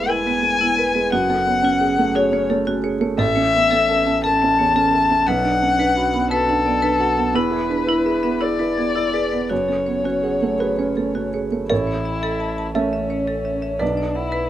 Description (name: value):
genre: neoclassical piano and strings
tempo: 57 BPM (dotted quarters)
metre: 6/8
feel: rubato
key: A major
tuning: A4 = 441 Hz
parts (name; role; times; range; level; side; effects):
- muted violin; melody; 0.0-14.5 s; C#4 to A5; -20 LUFS; left 4 dB; slapback echo
- felt-muted upright piano; accompaniment; 0.0-14.5 s; A1 to E5; -21 LUFS; right 4 dB; none
- saturated sub bass; bass; 0.0-14.5 s; E1 to B1; -33 LUFS; equal; none
- marimba with hard mallets; arpeggios; 0.1-14.4 s; E4 to B5; -27 LUFS; equal; none
room: little or no reverb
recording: recorded outdoors, with no room sound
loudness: -17 LUFS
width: side -12 dB against mid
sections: 0.0-11.7 A section; 11.7-14.5 B section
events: none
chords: 0.0 E; 1.1 F#madd9; 3.2 A; 5.3 Bm; 7.4 E; 9.5 F#madd9; 11.7 A; 13.8 Bm